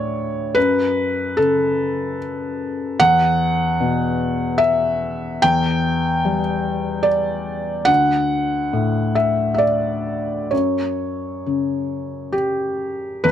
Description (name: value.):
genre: neoclassical minimalist piano.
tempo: 63-76 BPM.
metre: 3/4.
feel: rubato.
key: unclear.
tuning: A4 = 439 Hz.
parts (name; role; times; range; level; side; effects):
felt-muted upright piano; solo; 0.0-13.3 s; D2 to G5; -17 LUFS; left 1 dB; none.
room: little or no reverb.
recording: close, detailed microphones.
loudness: -17 LUFS.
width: side -10 dB against mid.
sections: 0.0-13.2 A section.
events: none.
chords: 0.0 D5; 0.6 F#m; 3.0 Em7; 7.9 D; 10.5 F#5.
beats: | 0.56 1.38 2.19 | 3.00 3.81 4.61 | 5.42 6.24 7.07 | 7.89 8.74 9.61 | 10.52 11.45 12.35 | 13.24.